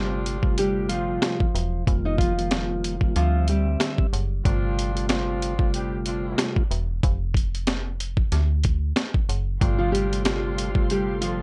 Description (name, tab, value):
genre	hip hop, boom-bap hip-hop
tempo	93 BPM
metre	4/4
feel	swing 56% on 16ths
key	unclear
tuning	A4 = 441 Hz
part	nylon-string guitar	melody	0.0-4.4, 9.8-11.4 s	F3 to Eb5	-30 LUFS	equal	high-pass filter, low-pass filter
part	mellow tonewheel organ	accompaniment	0.0-11.4 s	C3 to E5	-32 LUFS	equal	slow rotary speaker, high-pass filter, low-pass filter
part	mellow horn section	stabs	0.0-11.4 s	F3 to G4	-36 LUFS	equal	high-pass filter, low-pass filter, analog delay
part	metallic FM bass	bass	0.0-11.4 s	E1 to D2	-28 LUFS	equal	none
part	boom bap sampler-style drum kit	drums	0.3-11.4 s	hi-hat, kick drum, snare drum	-26 LUFS	equal	none
part	warm studio string section	sustained chords	9.6-11.4 s	A4 to C6	-42 LUFS	equal	high-pass filter, low-pass filter
room	little or no reverb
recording	dry, gritty hardware recording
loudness	-24 LUFS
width	mono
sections	0.0-11.4 A section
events	none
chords	0.0 G9sus4; 1.9 F9sus4; 3.2 D9sus4; 4.5 G9sus4; 7.0 N.C.; 8.3 D; 9.6 G9sus4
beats	0.58 1.23 | 1.87 2.52 3.16 3.81 | 4.45 5.10 5.74 6.39 | 7.03 7.68 8.32 8.97 | 9.61 10.26 10.90